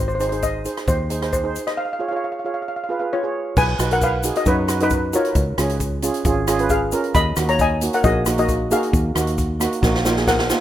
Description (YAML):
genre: calypso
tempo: 134 BPM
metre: 4/4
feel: straight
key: unclear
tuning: A4 = 440 Hz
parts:
  - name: steel pan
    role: melody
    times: 0.0-10.6 s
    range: D#4 to B5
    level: -22 LUFS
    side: left 2 dB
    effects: ping-pong delay
  - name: fingered electric bass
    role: bass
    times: 0.0-10.5 s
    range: G#1 to F#2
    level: -23 LUFS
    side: equal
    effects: none
  - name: egg shaker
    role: percussion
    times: 0.1-10.6 s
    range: none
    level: -32 LUFS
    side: left 8 dB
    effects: none
  - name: steel pan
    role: accompaniment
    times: 0.2-10.6 s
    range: A#3 to C#5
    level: -23 LUFS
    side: right 4 dB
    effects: none
  - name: swinging big-band drum kit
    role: drums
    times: 0.2-10.6 s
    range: crash cymbal, hi-hat, kick drum, rim click, snare drum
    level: -24 LUFS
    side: equal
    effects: none
room: light reverb, small room ambience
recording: rough home demo mix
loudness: -18 LUFS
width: side -12 dB against mid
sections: 0.0-3.6 A section; 3.6-10.6 B section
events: break 1.8-3.6; drum fill 9.8-10.6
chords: 0.0 G#; 1.8 C#; 3.6 B; 5.4 C#; 7.1 D#m